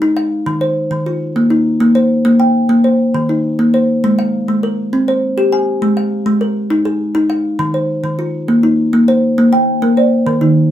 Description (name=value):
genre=southern african traditional, mbira-style interlocking cycle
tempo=135 BPM (dotted quarters)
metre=12/8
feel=straight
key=unclear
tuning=A4 = 440 Hz
part: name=kalimba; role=arpeggios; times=0.0-10.7 s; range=Eb3 to Ab5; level=-12 LUFS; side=equal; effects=none
part: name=folk marimba with soft mallets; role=arpeggios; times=9.5-10.7 s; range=Eb3 to D5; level=-15 LUFS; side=right 4 dB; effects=none
room=moderate studio reverb, RT60 0.5 s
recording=band playing live in one room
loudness=-12 LUFS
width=side -11 dB against mid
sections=0.0-9.4 A section; 9.4-10.7 A section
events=none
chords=0.5 Eb5; 2.3 Gmadd11/Bb; 3.1 Eb5; 4.0 Ab; 4.9 C5; 5.8 Ab5; 7.6 Eb5; 9.4 Bb